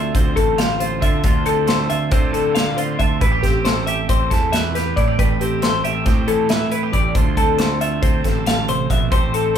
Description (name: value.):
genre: math rock and midwest emo.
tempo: 274 BPM (eighths).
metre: 9/8.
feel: straight.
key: unclear.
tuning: A4 = 441 Hz.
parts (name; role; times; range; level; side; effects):
twelve-string electric guitar; accompaniment; 0.0-9.6 s; A2 to C5; -24 LUFS; right 7 dB; none.
twelve-string electric guitar; arpeggios; 0.0-9.6 s; G4 to F5; -21 LUFS; left 4 dB; none.
fuzz picked electric bass; bass; 0.0-9.6 s; A1 to D3; -24 LUFS; equal; overdrive.
modern studio drum kit; drums; 0.1-9.6 s; hi-hat, kick drum, snare drum; -20 LUFS; equal; none.
room: light reverb.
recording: band playing live in one room.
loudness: -16 LUFS.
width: side -8 dB against mid.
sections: 0.0-9.6 A section.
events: none.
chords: 0.0 Dm7; 3.2 Am9; 7.2 Dm7.